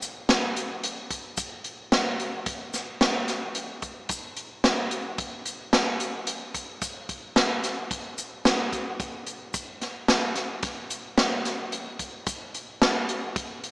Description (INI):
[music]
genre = progressive instrumental, progressive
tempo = 110 BPM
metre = 5/4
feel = straight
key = none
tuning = none
[part]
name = swinging big-band drum kit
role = drums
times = 0.0-13.7 s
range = hi-hat, kick drum, snare drum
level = -25 LUFS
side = equal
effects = none
[part]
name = tube shaker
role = percussion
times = 0.0-12.5 s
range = none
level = -37 LUFS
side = left 3 dB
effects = none
[sound]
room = moderate studio ambience, RT60 0.5 s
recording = small speaker sound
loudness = -25 LUFS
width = side -23 dB against mid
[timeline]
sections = 0.0-13.7 A section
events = none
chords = none